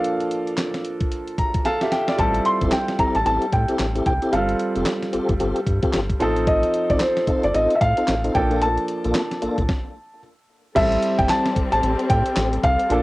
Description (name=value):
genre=R&B, new jack swing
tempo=112 BPM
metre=4/4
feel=swing 60% on 16ths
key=A phrygian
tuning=A4 = 440 Hz
part: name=felt-muted upright piano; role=melody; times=0.0-13.0 s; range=C5 to C6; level=-22 LUFS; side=equal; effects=cassette tape
part: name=clear grand piano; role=accompaniment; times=0.0-13.0 s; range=F3 to Bb5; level=-25 LUFS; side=right 1 dB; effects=tube saturation, cassette tape
part: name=clean 12-bit digital drum machine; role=drums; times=0.0-13.0 s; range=crash cymbal, handclaps, hi-hat, kick drum, snare drum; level=-25 LUFS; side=equal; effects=cassette tape
part: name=round analog bass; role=bass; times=2.2-13.0 s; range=F1 to A2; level=-25 LUFS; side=equal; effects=none
part: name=mellow tonewheel organ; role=stabs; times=2.6-9.6 s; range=Bb3 to A4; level=-25 LUFS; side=left 1 dB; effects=chorus vibrato, fast rotary speaker, cassette tape
part: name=warm studio string section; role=sustained chords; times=10.8-13.0 s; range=G3 to A4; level=-26 LUFS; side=left 2 dB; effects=cassette tape
room=light reverb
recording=home recording on cassette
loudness=-18 LUFS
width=side -19 dB against mid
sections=0.0-10.8 A section; 10.8-13.0 B section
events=grand piano fill 1.1-2.2; drum fill 1.7-2.2; stop 9.7-10.8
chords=0.0 Bbmaj7; 2.2 Am7; 4.3 G9sus4; 6.2 F7/A; 8.3 Bbmaj7; 10.8 Am7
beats=| 0.04 0.58 1.11 1.65 | 2.19 2.72 3.26 3.79 | 4.33 4.87 5.40 5.94 | 6.47 7.01 7.54 8.08 | 8.62 9.15 9.69 10.22 | 10.76 11.29 11.83 12.37 | 12.90